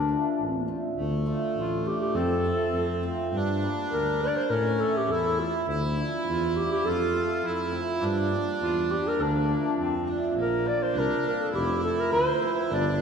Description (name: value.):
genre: klezmer.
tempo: 102 BPM.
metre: 2/4.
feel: straight.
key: D minor.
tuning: A4 = 440 Hz.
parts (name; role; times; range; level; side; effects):
breathy clarinet; melody; 0.0-13.0 s; D4 to D5; -27 LUFS; left 1 dB; none.
warm tuba; bass; 0.0-13.0 s; F1 to A2; -31 LUFS; left 1 dB; none.
cimbalom; accompaniment; 0.1-12.8 s; E3 to F4; -31 LUFS; right 3 dB; none.
accordion; second line; 1.0-13.0 s; A3 to F4; -31 LUFS; right 2 dB; none.
room: wet concert hall reverb, RT60 2.0 s.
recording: recorded in a church or concert hall.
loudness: -24 LUFS.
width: side -6 dB against mid.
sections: 1.0-10.4 A section; 10.4-13.0 B section.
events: none.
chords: 0.0 Dm; 2.2 F; 3.3 Gm; 4.5 A; 5.7 Dm; 6.8 F; 8.0 Gm; 9.2 Dm; 10.4 Bb; 11.5 F.